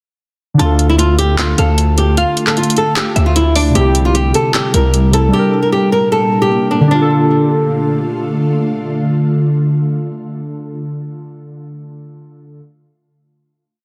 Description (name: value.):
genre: hip hop, trap.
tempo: 152 BPM.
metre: 4/4.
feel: half-time.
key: D minor.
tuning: A4 = 441 Hz.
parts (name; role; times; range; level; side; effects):
warbly lo-fi synth keys; accompaniment; 0.5-12.6 s; C3 to Bb4; -20 LUFS; equal; chorus.
flamenco guitar; melody; 0.6-8.1 s; D4 to Bb4; -18 LUFS; equal; digital delay.
glassy wavetable pluck; second line; 0.6-3.7 s; D5 to A5; -26 LUFS; equal; chorus, digital delay.
ethereal airy pad; sustained chords; 1.5-10.3 s; Bb2 to G4; -21 LUFS; equal; ensemble chorus, built-in reverb, phaser.
distorted 808-style bass; bass; 0.6-5.3 s; C2 to D2; -16 LUFS; equal; distortion.
trap drum kit; drums; 0.6-5.2 s; handclaps, hi-hat; -21 LUFS; equal; overdrive.
room: light reverb.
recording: dense, heavily limited modern master.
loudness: -13 LUFS.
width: mono.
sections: 0.6-6.9 hook; 6.9-10.1 final chord.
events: none.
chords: 0.6 Dm; 3.8 C; 5.3 Gmadd9; 6.9 Dm.